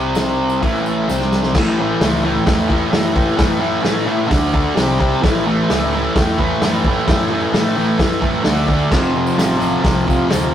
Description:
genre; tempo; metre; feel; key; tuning
garage rock duo or trio; 130 BPM; 4/4; straight; unclear; A4 = 442 Hz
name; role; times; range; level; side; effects
fuzz guitar; riff; 0.0-10.5 s; F2 to D4; -16 LUFS; equal; distortion
hollow-body short-scale picked electric bass; bass; 0.0-10.5 s; F1 to A2; -27 LUFS; equal; tube saturation
vintage drum kit; drums; 0.2-10.4 s; crash cymbal, hi-hat, kick drum, snare drum; -19 LUFS; equal; none
tambourine; percussion; 0.2-1.4, 8.9-10.5 s; none; -39 LUFS; left 4 dB; none
room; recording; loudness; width
moderate stone room reverb, RT60 1.0 s; rough rehearsal-room recording, tube saturation; -14 LUFS; side -10 dB against mid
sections
0.0-1.6 A section; 1.6-10.5 B section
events
drum fill 1.1-1.6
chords
0.0 C5; 0.6 A5; 1.1 C5; 1.6 A; 4.3 D5; 4.8 C5; 5.2 A5; 8.5 D5; 8.9 F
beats
0.17 0.64 1.09 | 1.55 2.02 2.48 2.93 | 3.39 3.85 4.31 4.77 | 5.23 5.69 6.15 6.61 | 7.07 7.54 8.00 8.46 | 8.92 9.38 9.85 10.31

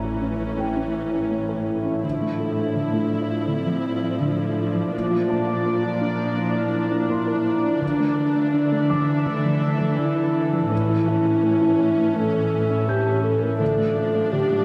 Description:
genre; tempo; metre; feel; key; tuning
cinematic; 83 BPM; 4/4; straight; D minor; A4 = 439 Hz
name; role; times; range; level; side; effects
warm symphonic viola section; accompaniment; 0.0-14.6 s; E3 to E4; -32 LUFS; equal; none
analog drone; sustained chords; 0.0-14.6 s; E3 to E5; -30 LUFS; equal; chorus
dark French horn section; sustained chords; 0.0-14.6 s; A3 to Bb4; -26 LUFS; equal; none
glassy wavetable pluck; arpeggios; 0.0-14.6 s; D3 to Bb4; -33 LUFS; equal; chorus, delay
warm symphonic cello section; bass; 0.0-14.6 s; A2 to D3; -29 LUFS; equal; none
impact; sound effects; 0.0-2.0 s; none; -41 LUFS; equal; none
dark concert grand piano; texture; 0.0-14.6 s; G5 to G6; -39 LUFS; equal; delay
room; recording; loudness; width
light reverb; close, detailed microphones; -22 LUFS; mono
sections
0.0-14.6 A section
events
impact 0.0-2.0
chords
0.0 A; 2.0 Dmadd9/A; 4.9 Bb; 7.8 Dmadd9; 10.7 A; 13.6 Dmadd9/A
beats
0.59 1.32 | 2.04 2.76 3.48 4.21 | 4.93 5.65 6.38 7.10 | 7.82 8.54 9.27 9.99 | 10.71 11.44 12.16 12.88 | 13.61 14.33

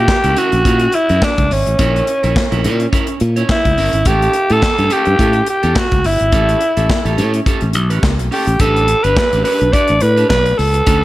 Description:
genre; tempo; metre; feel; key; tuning
disco; 106 BPM; 4/4; swing 56% on 16ths; unclear; A4 = 437 Hz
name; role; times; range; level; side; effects
breathy alto saxophone; melody; 0.0-11.0 s; C#4 to D5; -15 LUFS; equal; analog delay
electric guitar at the edge of break-up; accompaniment; 0.0-11.0 s; C#4 to C#5; -22 LUFS; right 2 dB; none
modern bright fingered electric bass; bass; 0.0-11.0 s; G1 to A#2; -16 LUFS; equal; none
modern studio drum kit; drums; 0.1-11.0 s; handclaps, hi-hat, kick drum, snare drum; -18 LUFS; equal; gated reverb
room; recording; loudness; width
light reverb, studio ambience; none; -12 LUFS; side -16 dB against mid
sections
0.0-8.6 A section; 8.6-11.0 B section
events
none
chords
0.0 F#7 (rootless); 4.1 A7; 8.6 A9sus4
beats
0.08 0.65 1.22 | 1.79 2.35 2.92 3.49 | 4.06 4.63 5.19 5.76 | 6.33 6.90 7.46 8.03 | 8.60 9.17 9.74 10.31 | 10.88

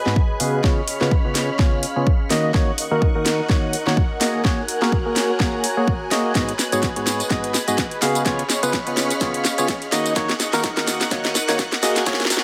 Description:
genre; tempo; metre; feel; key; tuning
piano house; 126 BPM; 4/4; swing 56% on 16ths; G# dorian; A4 = 440 Hz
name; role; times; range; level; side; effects
string machine, violins; sustained chords; 0.0-12.4 s; A#4 to F#6; -32 LUFS; equal; ensemble chorus, sidechain pumping
airy breathy pad; texture; 0.0-12.4 s; C#4 to B5; -31 LUFS; equal; chorus, sidechain pumping
percussive organ stab; riff; 0.1-12.2 s; G#2 to E#5; -25 LUFS; equal; lush chorus, vintage 12-bit sampler grit, sidechain pumping, digital delay
house drum kit; drums; 0.1-12.4 s; hi-hat, snare drum, tambourine; -25 LUFS; equal; none
electronic kick drum; drums; 0.2-12.2 s; none; -23 LUFS; equal; overdrive
room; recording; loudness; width
light reverb, digital ambience; high-pass filter; -20 LUFS; mono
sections
0.0-12.4 A section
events
build-up 0.0-12.4; drum fill 0.0-12.4; filter sweep on synth stab 0.0-12.4; filter sweep on string machine 0.0-12.4; filter sweep 0.0-12.4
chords
0.0 G#m7; 0.6 C#7; 2.3 D#m7; 4.2 F#add9; 6.4 G#m7; 8.3 C#7; 9.9 D#m7; 11.8 F#add9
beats
0.16 | 0.64 1.11 1.59 2.07 | 2.54 3.02 3.50 3.97 | 4.45 4.92 5.40 5.88 | 6.35 6.83 7.30 7.78 | 8.26 8.73 9.21 9.69 | 10.16 10.64 11.12 11.59 | 12.07

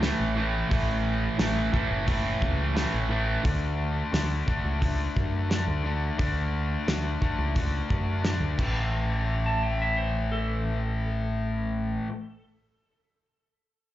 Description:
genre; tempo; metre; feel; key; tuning
classic rock; 88 BPM; 4/4; straight; A major; A4 = 443 Hz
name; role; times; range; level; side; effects
distorted electric guitar; riff; 0.0-12.1 s; A2 to D4; -30 LUFS; left 3 dB; distortion
distorted electric guitar; riff; 0.0-3.4 s; A2 to A3; -30 LUFS; right 8 dB; distortion, slapback echo
growling fingered electric bass; bass; 0.0-12.0 s; F#1 to F#2; -28 LUFS; equal; overdrive
cloth-damped thuddy drum kit; drums; 0.0-8.7 s; crash cymbal, hi-hat, kick drum, snare drum; -29 LUFS; equal; none
clean lap steel guitar; second line; 9.5-12.4 s; A4 to A5; -32 LUFS; right 2 dB; analog delay
room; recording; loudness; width
light reverb; live gig heard through the venue's PA, club reverb, nothing above 7.6 kHz; -25 LUFS; side -14 dB against mid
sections
0.0-8.9 A section; 8.9-11.7 B section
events
none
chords
0.0 A; 3.5 D; 8.6 A5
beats
0.03 | 0.71 1.40 2.08 2.77 | 3.45 4.14 4.82 5.51 | 6.19 6.88 7.56 8.25 | 8.93 9.62 10.30 10.99

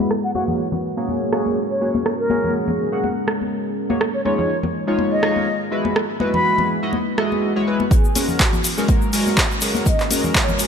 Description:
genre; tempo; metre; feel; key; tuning
deep house; 123 BPM; 4/4; swing 55% on 16ths; G# minor; A4 = 440 Hz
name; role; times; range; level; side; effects
deep dark ambient pad; sustained chords; 0.0-10.7 s; G#3 to C#5; -27 LUFS; left 2 dB; chorus, built-in reverb, sidechain pumping
chorused polysynth; stabs; 0.0-10.7 s; G#3 to F#5; -22 LUFS; right 1 dB; sidechain pumping, tape echo
punchy analog drum machine; drums; 0.1-10.7 s; handclaps, hi-hat, rim click; -22 LUFS; right 1 dB; none
mellow silver concert flute; melody; 0.2-6.7 s; A#4 to B5; -24 LUFS; left 1 dB; ping-pong delay
congas; percussion; 0.3-10.6 s; none; -27 LUFS; left 4 dB; none
mellow horn-like synth lead; melody; 7.9-10.6 s; F#4 to D#5; -28 LUFS; right 1 dB; ensemble chorus, tape echo
electronic kick drum; drums; 7.9-10.5 s; none; -18 LUFS; equal; none
modern studio drum kit; drums; 7.9-10.7 s; hi-hat, snare drum; -33 LUFS; left 6 dB; none
egg shaker; percussion; 7.9-10.7 s; none; -27 LUFS; left 4 dB; none
riser; sound effects; 9.5-10.7 s; none; -38 LUFS; right 2 dB; none
room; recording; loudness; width
moderate lush hall reverb, RT60 2.4 s; low-pass filter; -17 LUFS; side -7 dB against mid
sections
0.0-7.9 A section; 7.9-10.7 B section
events
filter sweep on analog polysynth 0.0-7.9; filter sweep 0.0-7.9, 7.9-10.7; build-up 7.9-10.7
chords
0.1 G#9sus4; 4.0 D#9sus4; 5.7 F#9sus4; 7.9 G#9sus4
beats
| 0.11 0.59 1.08 1.57 | 2.06 2.55 3.03 3.52 | 4.01 4.50 4.99 5.47 | 5.96 6.45 6.94 7.42 | 7.91 8.40 8.89 9.38 | 9.86 10.35

